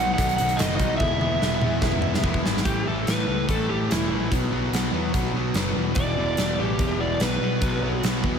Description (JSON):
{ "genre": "classic rock", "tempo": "145 BPM", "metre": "4/4", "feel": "straight", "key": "E major", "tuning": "A4 = 440 Hz", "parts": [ { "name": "overdriven slide guitar", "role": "melody", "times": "0.0-8.0 s", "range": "E4 to F#5", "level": "-27 LUFS", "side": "right 1 dB", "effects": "slapback echo" }, { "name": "crunchy overdriven guitar", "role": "riff", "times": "0.0-8.4 s", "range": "E2 to E4", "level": "-26 LUFS", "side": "left 1 dB", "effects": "slapback echo" }, { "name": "fuzz picked electric bass", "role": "bass", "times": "0.0-8.4 s", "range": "E1 to E2", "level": "-28 LUFS", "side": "equal", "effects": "overdrive" }, { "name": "huge arena drum kit", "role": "drums", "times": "0.2-8.3 s", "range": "hi-hat, kick drum, snare drum, toms", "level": "-26 LUFS", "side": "equal", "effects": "none" }, { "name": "cowbell", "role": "percussion", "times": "0.2-2.3 s", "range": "none", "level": "-41 LUFS", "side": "right 6 dB", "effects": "none" } ], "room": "moderate lush hall reverb, RT60 1.8 s", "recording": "big arena sound", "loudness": "-21 LUFS", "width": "side -7 dB against mid", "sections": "0.0-2.7 A section; 2.7-8.4 B section", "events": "drum fill 1.0-2.7; electric slide guitar solo 2.7-8.4", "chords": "0.0 B; 1.0 E; 2.7 A5; 4.3 B5; 5.8 E5; 7.4 B5", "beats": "0.19 0.60 | 1.01 1.42 1.83 2.25 | 2.66 3.07 3.48 3.90 | 4.31 4.73 5.14 5.55 | 5.97 6.38 6.80 7.21 | 7.62 8.04" }